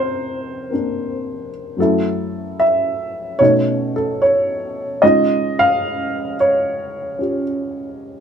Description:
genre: solo jazz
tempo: 74 BPM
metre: 4/4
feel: swing 69% on 8ths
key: unclear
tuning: A4 = 440 Hz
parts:
  - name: dark upright piano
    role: solo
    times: 0.0-8.2 s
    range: F#2 to F5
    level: -16 LUFS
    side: equal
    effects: none
room: light reverb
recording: none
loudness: -16 LUFS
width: side -7 dB against mid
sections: 0.0-8.2 A section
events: none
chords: 0.0 Cm9; 1.8 F#m7; 3.4 B9; 5.0 Dbadd9

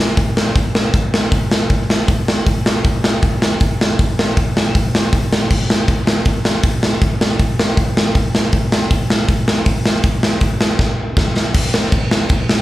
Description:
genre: punk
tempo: 159 BPM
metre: 4/4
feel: straight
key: none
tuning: none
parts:
  - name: big rock drum kit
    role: drums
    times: 0.0-12.6 s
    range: crash cymbal, hi-hat, kick drum, snare drum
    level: -13 LUFS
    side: equal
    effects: none
room: light reverb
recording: live gig heard through the venue's PA, club reverb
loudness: -13 LUFS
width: side -16 dB against mid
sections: 0.0-11.5 A section; 11.5-12.6 B section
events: drum fill 10.8-11.5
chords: none

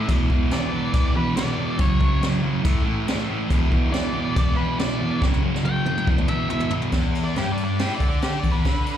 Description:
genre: garage rock duo or trio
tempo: 140 BPM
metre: 4/4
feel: straight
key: unclear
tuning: A4 = 435 Hz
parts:
  - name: octave-fuzz lead guitar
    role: melody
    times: 0.0-8.9 s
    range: G4 to G5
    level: -29 LUFS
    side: left 1 dB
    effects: distortion, slapback echo, analog delay
  - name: thick fuzz guitar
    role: riff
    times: 0.0-9.0 s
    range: E2 to A3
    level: -23 LUFS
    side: equal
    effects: distortion, slapback echo
  - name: jazz brush drum kit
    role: drums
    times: 0.1-9.0 s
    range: crash cymbal, kick drum, ride cymbal, snare drum, toms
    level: -23 LUFS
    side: equal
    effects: none
room: little or no reverb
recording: live gig heard through the venue's PA, club reverb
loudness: -20 LUFS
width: side -10 dB against mid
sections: 0.0-6.9 A section; 6.9-9.0 B section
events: drum fill 5.2-6.9; lead electric guitar solo 6.9-9.0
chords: 0.1 E5; 1.8 F#5; 2.7 A5; 3.5 E5; 5.2 F#5; 6.1 E5

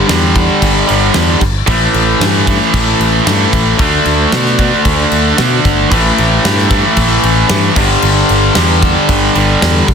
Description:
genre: hard rock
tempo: 113 BPM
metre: 4/4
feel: straight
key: unclear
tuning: A4 = 445 Hz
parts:
  - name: biting overdriven guitar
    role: riff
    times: 0.0-9.9 s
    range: G2 to D4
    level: -14 LUFS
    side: left 12 dB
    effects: none
  - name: tight distorted guitar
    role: riff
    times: 0.0-9.9 s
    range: G2 to D4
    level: -14 LUFS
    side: right 12 dB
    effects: distortion
  - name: modern bright picked electric bass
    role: bass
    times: 0.0-9.9 s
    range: G1 to B2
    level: -15 LUFS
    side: equal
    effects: none
  - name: big rock drum kit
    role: drums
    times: 0.1-9.9 s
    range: crash cymbal, kick drum, snare drum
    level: -16 LUFS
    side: equal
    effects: none
room: small room ambience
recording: dense, heavily limited modern master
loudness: -9 LUFS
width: side -6 dB against mid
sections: 0.0-9.9 A section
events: none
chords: 0.0 G5; 1.7 A5; 3.8 D5; 5.9 A5; 7.8 G5

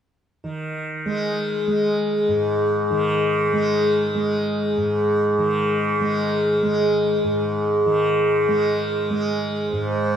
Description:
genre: world meditative, free-time meditation music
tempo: free time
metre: none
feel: none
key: unclear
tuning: A4 = 441 Hz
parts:
  - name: tanpura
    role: drone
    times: 0.4-10.2 s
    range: G#2 to G#3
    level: -22 LUFS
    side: right 2 dB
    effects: none
  - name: glass harmonica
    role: texture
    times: 1.0-10.2 s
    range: G#4 to B#4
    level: -21 LUFS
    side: left 2 dB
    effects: none
room: wet huge ambient reverb, RT60 4.3 s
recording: none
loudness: -19 LUFS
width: side -8 dB against mid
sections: 0.4-10.2 A section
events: none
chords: none

